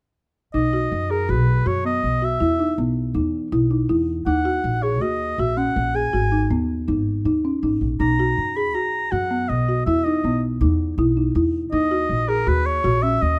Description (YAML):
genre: contemporary instrumental, chamber music in an uneven meter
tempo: 161 BPM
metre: 5/4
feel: straight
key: B major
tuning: A4 = 440 Hz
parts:
  - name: clear oboe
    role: melody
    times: 0.5-13.4 s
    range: A#4 to B5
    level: -26 LUFS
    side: equal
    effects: none
  - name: folk marimba with medium mallets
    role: arpeggios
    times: 0.5-13.3 s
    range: B3 to G#4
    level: -25 LUFS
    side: equal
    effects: none
  - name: upright bass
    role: bass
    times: 0.5-13.4 s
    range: G#1 to F#2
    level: -25 LUFS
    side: equal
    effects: none
room: little or no reverb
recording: close, detailed microphones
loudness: -21 LUFS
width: mono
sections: 0.5-13.4 A section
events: none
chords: 0.5 B; 2.4 E5; 4.3 D#m7; 6.1 G#m; 8.0 Bmaj7(no3); 9.9 E5; 11.7 D#m7